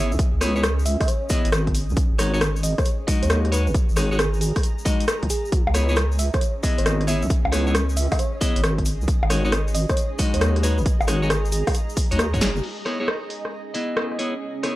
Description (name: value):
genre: UK garage, two-step garage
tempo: 135 BPM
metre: 4/4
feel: swing 67% on 16ths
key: C# dorian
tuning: A4 = 438 Hz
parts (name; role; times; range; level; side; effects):
- bell-like FM electric piano; melody; 0.0-12.6 s; G#4 to E5; -30 LUFS; right 2 dB; chorus, tremolo, tape echo
- clean electric guitar; stabs; 0.0-14.8 s; G#3 to D#5; -27 LUFS; left 2 dB; tape echo
- deep soft wobble bass; bass; 0.0-12.6 s; F#1 to G#2; -22 LUFS; equal; chorus
- granular cloud pad; texture; 0.0-14.8 s; C#4 to A#5; -35 LUFS; right 2 dB; built-in reverb, sidechain pumping
- egg shaker; percussion; 0.1-12.6 s; none; -36 LUFS; left 2 dB; none
- electronic kick drum; drums; 0.2-12.4 s; none; -22 LUFS; equal; overdrive
- punchy analog drum machine; drums; 0.2-14.8 s; bongos, crash cymbal, hi-hat, rim click, snare drum; -26 LUFS; equal; low-pass filter on hats, low-pass filter on snare, low-pass filter on cymbals, low-pass filter on perc, low-pass filter on room
room: little or no reverb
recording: dry, gritty hardware recording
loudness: -19 LUFS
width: side -16 dB against mid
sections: 0.0-12.6 A section; 12.6-14.8 B section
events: drum fill 12.4; band accent 12.4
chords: 0.0 C#m7; 2.0 G#7sus4; 5.5 C#m7; 9.1 G#7sus4; 12.6 C#m7